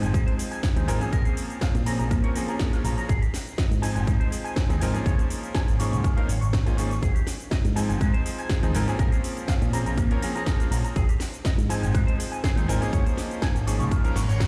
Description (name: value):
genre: nu-disco, nu disco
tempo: 122 BPM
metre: 4/4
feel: straight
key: Ab major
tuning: A4 = 440 Hz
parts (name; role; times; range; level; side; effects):
- bright electric grand piano; accompaniment; 0.0-14.1 s; F3 to Bb4; -33 LUFS; equal; sidechain pumping, low-pass filter, tape echo
- electric guitar with an envelope filter; riff; 0.0-14.4 s; Ab3 to Db6; -37 LUFS; equal; lush chorus, tape echo
- picked electric bass with an envelope filter; bass; 0.0-14.5 s; Ab1 to Bb2; -28 LUFS; equal; none
- house drum kit; drums; 0.0-14.5 s; cabasa, hi-hat, snare drum; -37 LUFS; equal; none
- electronic kick drum; drums; 0.1-14.5 s; none; -26 LUFS; equal; none
- reverse cymbal; sound effects; 14.1-14.5 s; none; -41 LUFS; equal; none
room: digital ambience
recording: played on a big sound system in a bare room, large studio reverb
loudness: -25 LUFS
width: mono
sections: 0.0-14.5 A section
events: reverse cymbal 14.1-14.5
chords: 0.0 Ab6; 1.1 Bbm9; 3.1 Ab6; 5.1 Db69; 7.0 Ab6; 9.0 Bbm9; 11.0 Ab6; 12.9 Db69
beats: 0.14 0.64 | 1.13 1.62 2.11 2.60 | 3.09 3.59 4.08 4.57 | 5.06 5.55 6.04 6.54 | 7.03 7.52 8.01 8.50 | 9.00 9.49 9.98 10.47 | 10.96 11.46 11.95 12.44 | 12.93 13.42 13.91 14.41